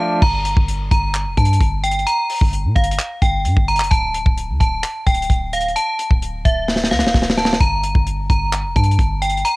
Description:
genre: hip hop, trap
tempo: 130 BPM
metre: 4/4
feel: half-time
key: G dorian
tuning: A4 = 440 Hz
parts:
  - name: metallic FM bell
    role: melody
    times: 0.0-9.6 s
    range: E5 to Bb5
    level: -20 LUFS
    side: equal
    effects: chorus, low-pass filter, cassette tape
  - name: warm 808-style bass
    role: bass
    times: 0.2-9.4 s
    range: D1 to Bb2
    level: -20 LUFS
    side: equal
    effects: none
  - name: tight funk drum kit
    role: drums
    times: 0.2-9.6 s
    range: crash cymbal, handclaps, hi-hat, kick drum, snare drum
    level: -17 LUFS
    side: equal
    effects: cassette tape
room: small room ambience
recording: home recording on cassette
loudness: -15 LUFS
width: side -22 dB against mid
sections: 0.2-9.6 A section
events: break 0.0; drum fill 6.7-7.6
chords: 0.2 Gm; 3.9 D5; 7.6 Gm

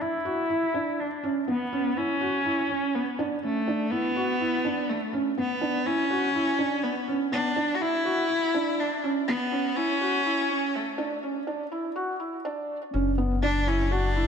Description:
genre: piano and strings electronica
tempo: 123 BPM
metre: 4/4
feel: straight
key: unclear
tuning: A4 = 441 Hz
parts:
  - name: rich cello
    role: melody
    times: 0.0-14.3 s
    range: A3 to F#4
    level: -27 LUFS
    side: left 1 dB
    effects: low-pass filter, digital delay
  - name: felt-muted upright piano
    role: riff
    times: 0.0-14.3 s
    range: B3 to F#4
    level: -28 LUFS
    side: right 2 dB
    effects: digital delay
  - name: round analog bass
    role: bass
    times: 12.9-14.3 s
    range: F#1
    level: -26 LUFS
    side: left 1 dB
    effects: none
room: moderate concert hall reverb, RT60 2.3 s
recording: high-pass filter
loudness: -24 LUFS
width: side -7 dB against mid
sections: 0.0-12.9 A section; 12.9-14.3 B section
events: build-up 0.0-12.9; filter sweep on cello 0.0-12.9; filter sweep 0.0-12.9; break 11.0-12.9; drop 12.9-14.3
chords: 0.0 Bm (rootless); 1.2 N.C.; 3.2 Dsus2; 5.1 Bm; 9.0 N.C.; 11.0 Dsus2; 12.9 Bm/F# (rootless)

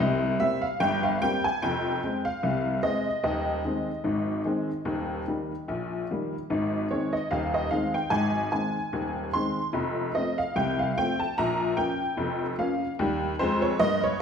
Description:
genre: ragtime piano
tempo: 74 BPM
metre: 2/4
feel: swing 55% on 16ths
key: Ab major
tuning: A4 = 440 Hz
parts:
  - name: honky-tonk upright piano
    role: solo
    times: 0.0-14.2 s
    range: Eb1 to C6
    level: -25 LUFS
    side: equal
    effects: none
room: wet recital hall reverb, RT60 1.5 s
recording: recorded in a church or concert hall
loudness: -25 LUFS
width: side -7 dB against mid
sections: 0.0-14.2 A section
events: none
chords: 0.0 C5; 1.6 Fm; 3.3 Ab/Eb; 4.9 Eb; 6.5 Ab; 9.8 F; 11.4 Bbm; 13.0 Eb

